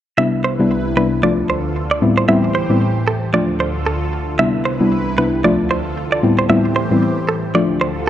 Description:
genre	afrobeats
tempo	114 BPM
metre	4/4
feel	swing 58% on 16ths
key	unclear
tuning	A4 = 440 Hz
part	soft round pluck	accompaniment	0.2-8.1 s	A2 to F4	-16 LUFS	left 2 dB	chorus
part	lush unison pad	sustained chords	0.2-8.1 s	C2 to C5	-22 LUFS	equal	chorus, phaser
part	direct-recorded clean electric guitar	riff	0.2-8.1 s	A4 to E5	-20 LUFS	right 4 dB	tape echo
room	moderate plate reverb, RT60 2.4 s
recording	dark, warm production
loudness	-14 LUFS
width	side -11 dB against mid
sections	0.2-8.1 A section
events	none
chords	0.2 Cmaj7; 1.2 Dm; 2.0 Am7; 3.3 Dm; 4.4 Cmaj7; 5.4 Dm; 6.2 Am7; 7.5 Dm

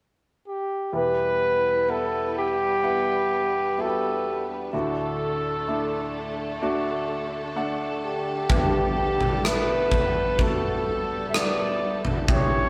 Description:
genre	pop ballad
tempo	63 BPM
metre	4/4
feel	straight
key	unclear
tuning	A4 = 440 Hz
part	warm flugelhorn	melody	0.5-12.7 s	G4 to E5	-27 LUFS	equal	none
part	warm concert grand piano	accompaniment	0.9-12.7 s	D2 to F#5	-31 LUFS	equal	none
part	warm studio string section	sustained chords	0.9-12.7 s	D3 to B4	-36 LUFS	equal	none
part	huge arena drum kit	drums	8.5-12.5 s	kick drum, rim click, toms	-27 LUFS	equal	none
room	moderate studio reverb, RT60 0.8 s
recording	band playing live in one room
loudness	-25 LUFS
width	mono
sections	0.9-12.7 A section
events	none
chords	0.0 N.C.; 0.9 Em; 4.7 D; 8.5 Gadd9

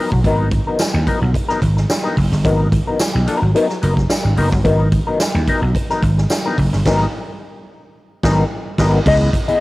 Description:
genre	funk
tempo	109 BPM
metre	4/4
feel	straight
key	G# minor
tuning	A4 = 440 Hz
part	mellow electric guitar	accompaniment	0.0-9.6 s	F#3 to D#5	-19 LUFS	left 3 dB	wah
part	vintage slap bass	bass	0.1-9.5 s	F#1 to D#2	-16 LUFS	equal	none
part	swinging big-band drum kit	drums	0.1-9.6 s	crash cymbal, hi-hat, kick drum, snare drum	-20 LUFS	equal	cassette tape
part	tambourine	percussion	0.8-6.4 s	none	-28 LUFS	left 1 dB	none
room	small room reverb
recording	home recording on cassette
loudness	-14 LUFS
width	side -19 dB against mid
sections	0.0-9.1 A section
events	band accent 6.9-9.1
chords	0.0 G#m9; 9.1 C#m9

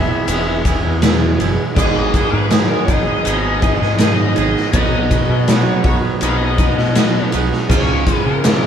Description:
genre	psychedelic rock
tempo	81 BPM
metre	4/4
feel	straight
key	unclear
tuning	A4 = 437 Hz
part	smooth overdriven lead guitar	melody	0.0-8.7 s	Bb4 to F5	-23 LUFS	left 7 dB	wah
part	twangy electric guitar	riff	0.0-8.7 s	Db2 to Cb5	-18 LUFS	right 4 dB	phaser
part	growling picked electric bass	bass	0.0-8.6 s	E1 to Db3	-20 LUFS	left 1 dB	overdrive
part	raw garage drum kit	drums	0.3-8.6 s	crash cymbal, kick drum, ride cymbal, snare drum	-16 LUFS	left 1 dB	none
part	maracas	percussion	0.3-8.6 s	none	-32 LUFS	left 10 dB	none
room	moderate large studio reverb, RT60 0.9 s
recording	band playing live in one room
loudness	-13 LUFS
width	side -8 dB against mid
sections	0.0-8.7 A section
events	none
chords	0.0 E; 1.8 Abm; 4.7 Cb; 7.7 Db6

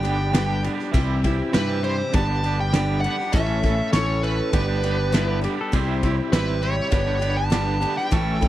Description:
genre	folk rock and heartland rock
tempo	100 BPM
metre	4/4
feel	straight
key	unclear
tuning	A4 = 442 Hz
part	smooth overdriven lead guitar	melody	0.0-8.5 s	B4 to A5	-26 LUFS	equal	none
part	picked steel-string acoustic guitar	accompaniment	0.0-8.5 s	G2 to A4	-28 LUFS	left 4 dB	none
part	bright tonewheel organ	sustained chords	0.0-8.5 s	D4 to E6	-38 LUFS	left 1 dB	none
part	twangy electric guitar	riff	0.0-8.5 s	G2 to A4	-28 LUFS	right 7 dB	tremolo
part	fingered electric bass	bass	0.0-8.5 s	G1 to G2	-24 LUFS	equal	none
part	loose indie drum kit	drums	0.0-8.5 s	crash cymbal, kick drum, ride cymbal, snare drum	-25 LUFS	equal	none
part	pedal steel guitar	second line	5.1-6.2 s	E4 to C5	-31 LUFS	left 6 dB	none
room	little or no reverb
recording	none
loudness	-20 LUFS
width	side -14 dB against mid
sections	0.0-8.5 A section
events	none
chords	0.0 G; 0.9 C; 2.1 G; 3.3 A; 4.5 G; 5.7 C; 6.9 G

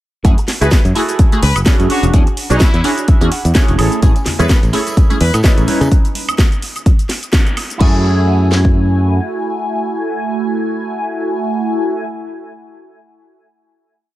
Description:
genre	filtered disco house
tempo	127 BPM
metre	4/4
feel	swing 56% on 16ths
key	F# minor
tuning	A4 = 440 Hz
part	funky polysynth comp	accompaniment	0.2-12.1 s	A3 to G#5	-19 LUFS	equal	chorus, phaser, sidechain pumping, tape echo
part	electric guitar with an envelope filter	riff	0.2-12.1 s	D4 to A5	-24 LUFS	right 4 dB	vintage 12-bit sampler grit, sidechain pumping
part	modern bright fingered electric bass	bass	0.2-9.2 s	E1 to C#3	-14 LUFS	equal	sidechain pumping
part	house drum kit	drums	0.2-8.7 s	kick drum, snare drum	-11 LUFS	equal	small room ambience
part	house drum kit	drums	0.2-7.9 s	crash cymbal, hi-hat, shaker, snare drum, woodblock	-20 LUFS	equal	sidechain pumping on hats, small room ambience, sidechain pumping on perc, sidechain pumping on cymbals
part	bright trumpet section	melody	0.6-5.3 s	E4 to B4	-24 LUFS	left 2 dB	vintage 12-bit sampler grit, sidechain pumping, tape echo
part	tambourine and congas	percussion	4.0-5.9 s	none	-26 LUFS	left 2 dB	sidechain pumping on perc, tape echo
room	light reverb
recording	echo-heavy mix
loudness	-11 LUFS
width	side -15 dB against mid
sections	0.2-7.8 drop; 7.8-11.6 final chord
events	drop 0.2-7.8; clean electric guitar fill 2.6-4.0; band accent 7.3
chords	0.2 F#m9; 1.9 E13; 3.8 Amaj7; 5.7 C#m9; 7.8 F#m9

